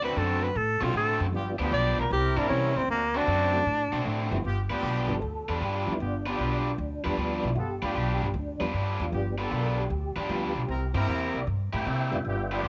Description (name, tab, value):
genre	electric blues shuffle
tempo	154 BPM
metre	4/4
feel	swing 68% on 8ths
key	G mixolydian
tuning	A4 = 438 Hz
part	breathy tenor saxophone	melody	0.0-4.3 s	Bb3 to D5	-29 LUFS	equal	none
part	raw garage guitar	riff	0.0-12.7 s	G2 to B4	-35 LUFS	equal	overdrive
part	bright horn section	stabs	0.0-12.7 s	B3 to Bb4	-37 LUFS	equal	slapback echo
part	upright bass	bass	0.0-12.7 s	F1 to C3	-32 LUFS	equal	none
part	mellow tonewheel organ	accompaniment	0.8-12.6 s	D3 to G5	-36 LUFS	equal	slow rotary speaker, chorus vibrato
room	light reverb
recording	nothing above 7.7 kHz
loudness	-28 LUFS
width	mono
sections	0.0-4.4 A section; 4.4-12.7 A section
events	tenor saxophone solo 0.0-4.4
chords	0.0 D7; 1.3 G7; 2.1 C7; 2.9 D7; 4.4 G7; 10.7 C7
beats	0.15 0.54 0.93 | 1.32 1.71 2.10 2.49 | 2.88 3.27 3.66 4.05 | 4.44 4.83 5.22 5.61 | 6.00 6.39 6.78 7.17 | 7.56 7.95 8.34 8.73 | 9.12 9.51 9.90 10.29 | 10.68 11.07 11.46 11.85 | 12.24 12.63